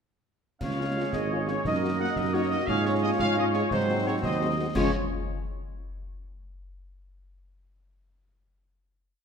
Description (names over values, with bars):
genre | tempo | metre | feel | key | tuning
military-style march for wind band | 116 BPM (dotted quarters) | 6/8 | straight | Db major | A4 = 440 Hz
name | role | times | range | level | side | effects
warm trumpet section | melody | 0.6-4.9 s | C5 to Gb5 | -31 LUFS | right 1 dB | none
warm woodwind section | second line | 0.6-4.9 s | F4 to Eb5 | -34 LUFS | left 1 dB | none
clear trombone section | sustained chords | 0.6-4.9 s | F3 to Eb4 | -34 LUFS | right 2 dB | none
mellow tuba | bass | 0.6-4.9 s | Ab1 to Ab2 | -29 LUFS | right 3 dB | none
concert snare drum, clash cymbals and concert bass drum | drums | 0.6-4.9 s | none | -36 LUFS | left 2 dB | none
mellow French horn section | accompaniment | 0.8-4.9 s | Ab3 to Gb4 | -33 LUFS | left 5 dB | none
warm euphonium | second line | 1.1-4.3 s | C4 to Ab4 | -33 LUFS | equal | none
room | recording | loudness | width
wet concert hall reverb, RT60 1.9 s | none | -24 LUFS | side -6 dB against mid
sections
0.6-4.8 A section; 4.8-5.8 final chord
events
none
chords
0.6 Db; 1.6 Ebm/Gb; 2.7 Db/Ab; 3.7 Ab7; 4.8 Db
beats
| 0.61 1.13 | 1.65 2.17 | 2.68 3.20 | 3.72 4.24 | 4.76